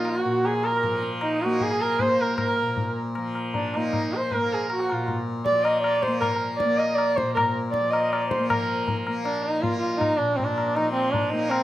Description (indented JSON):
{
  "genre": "indian classical, Hindustani",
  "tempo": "157 BPM",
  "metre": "4/4",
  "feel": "straight",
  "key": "Bb raga charukeshi",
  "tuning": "A4 = 440 Hz",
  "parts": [
    { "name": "dark sarangi", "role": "melody", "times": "0.0-11.6 s", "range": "C4 to Eb5", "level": "-24 LUFS", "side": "right 1 dB", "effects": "none" },
    { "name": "clear trumpet", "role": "second line", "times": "0.0-8.6 s", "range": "D4 to Eb5", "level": "-33 LUFS", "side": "right 4 dB", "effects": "slapback echo" },
    { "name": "tanpura", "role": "drone", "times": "0.0-11.6 s", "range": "Bb2 to Bb3", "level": "-29 LUFS", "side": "left 1 dB", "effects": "stereo widening" },
    { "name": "tabla", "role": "percussion", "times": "0.1-11.6 s", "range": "none", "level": "-30 LUFS", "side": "left 3 dB", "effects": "none" }
  ],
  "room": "light reverb",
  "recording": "recorded outdoors, with no room sound",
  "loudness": "-22 LUFS",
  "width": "side -14 dB against mid",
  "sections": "0.0-8.5 A section; 8.5-11.6 B section",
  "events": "speeding up 0.0-11.6",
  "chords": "none"
}